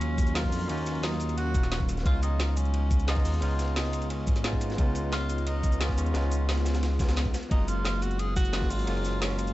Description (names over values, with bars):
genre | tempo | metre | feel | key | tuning
liquid drum and bass | 176 BPM | 4/4 | straight | unclear | A4 = 440 Hz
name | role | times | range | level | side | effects
warm tenor saxophone | melody | 0.0-9.5 s | Db4 to Ab4 | -36 LUFS | equal | digital delay
bell-like tine electric piano | accompaniment | 0.0-9.5 s | Gb3 to F5 | -34 LUFS | equal | none
shimmering ambient pad | sustained chords | 0.0-9.5 s | Gb3 to F5 | -40 LUFS | left 1 dB | none
smooth synth bass | bass | 0.0-9.5 s | Eb1 to F2 | -28 LUFS | equal | none
crunchy breakbeat drum kit | drums | 0.0-9.5 s | hi-hat, ride cymbal, snare drum | -40 LUFS | equal | high-pass filter on cymbals, high-pass filter on hats, high-pass filter on snare, high-pass filter on room
garage drum kit | drums | 0.0-9.5 s | hi-hat, shaker, snare drum | -35 LUFS | equal | overdrive
electronic kick drum | drums | 0.2-8.7 s | none | -26 LUFS | equal | overdrive
room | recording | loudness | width
studio ambience | dark, warm production, nothing above 8.0 kHz | -25 LUFS | side -16 dB against mid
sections
0.0-9.5 A section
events
none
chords
0.0 Ebm9; 2.1 Db9; 7.3 Gbmaj9